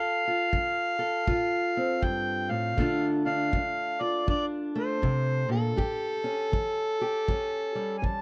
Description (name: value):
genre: acoustic country blues, solo or duo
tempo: 80 BPM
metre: 4/4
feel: swing 62% on 8ths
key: D minor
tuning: A4 = 440 Hz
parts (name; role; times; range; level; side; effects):
- overdriven harmonica; melody; 0.0-8.2 s; A4 to A5; -31 LUFS; equal; none
- fingerpicked steel-string acoustic guitar; accompaniment; 0.0-8.2 s; D2 to A4; -32 LUFS; equal; none
- kick drum; drums; 0.5-8.2 s; none; -31 LUFS; equal; none
room: small room reverb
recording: none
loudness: -28 LUFS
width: mono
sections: 0.0-8.2 A section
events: none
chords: 0.0 Dm7; 2.8 Bbmaj7; 5.8 A7